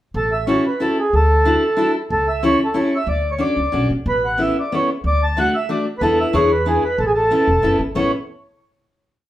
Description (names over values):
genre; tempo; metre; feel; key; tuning
musette waltz; 185 BPM; 3/4; rubato; A major; A4 = 440 Hz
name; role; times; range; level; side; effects
upright bass; bass; 0.1-8.1 s; E1 to E2; -22 LUFS; equal; none
mellow accordion; melody; 0.2-8.1 s; G#4 to A5; -18 LUFS; right 1 dB; plate reverb
fingerpicked steel-string acoustic guitar; accompaniment; 0.5-8.1 s; A3 to A4; -20 LUFS; left 2 dB; none
room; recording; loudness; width
wet studio reverb, RT60 0.5 s; heard from further back in the room; -16 LUFS; side -14 dB against mid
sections
0.2-8.0 A section; 8.0-8.9 final chord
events
none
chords
0.2 A6; 1.1 Dadd9; 2.1 A7/C#; 3.1 Dmaj7; 4.1 Aadd9; 5.0 D; 6.0 E7sus4; 6.3 E7; 7.0 Aadd9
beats
| 0.15 0.48 0.81 | 1.14 1.46 1.78 | 2.10 2.43 2.75 | 3.08 3.41 3.74 | 4.07 4.40 4.73 | 5.05 5.37 5.69 | 6.01 6.33 6.66 | 6.98 7.30 7.63 | 7.96